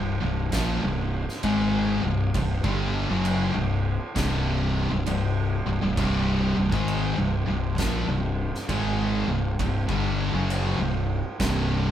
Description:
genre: stoner and doom metal.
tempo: 66 BPM.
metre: 4/4.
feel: swing 65% on 8ths.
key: unclear.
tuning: A4 = 439 Hz.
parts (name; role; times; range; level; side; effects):
thick fuzz guitar; riff; 0.0-11.9 s; C2 to Ab3; -28 LUFS; left 4 dB; distortion.
thick fuzz guitar; riff; 0.0-11.9 s; C2 to Ab3; -30 LUFS; right 2 dB; distortion.
tight distorted guitar; riff; 0.0-11.9 s; C2 to Ab3; -31 LUFS; equal; distortion.
fuzz fingered electric bass; bass; 0.0-11.9 s; C1 to Bb1; -28 LUFS; equal; overdrive.
oversized low-tuned drum kit; drums; 0.5-11.7 s; crash cymbal, kick drum, snare drum; -31 LUFS; right 1 dB; none.
room: moderate studio reverb, RT60 0.8 s.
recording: band playing live in one room.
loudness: -23 LUFS.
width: side -10 dB against mid.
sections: 0.0-11.9 A section.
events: none.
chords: 0.0 Cm.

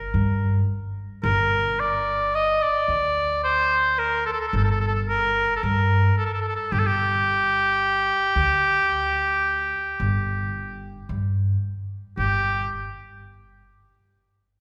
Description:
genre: Arabic maqam ensemble.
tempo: 110 BPM (eighths).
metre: 10/8.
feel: straight.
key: G minor.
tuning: A4 = 440 Hz.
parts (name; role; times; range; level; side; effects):
clear oboe; melody; 0.0-12.7 s; G4 to Eb5; -24 LUFS; equal; none.
upright bass; bass; 0.1-12.7 s; G1 to G2; -28 LUFS; equal; none.
room: wet scoring stage reverb, RT60 2.0 s.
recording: recorded in a church or concert hall.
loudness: -22 LUFS.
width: mono.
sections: 0.0-12.2 A section; 12.2-14.6 B section.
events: none.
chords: none.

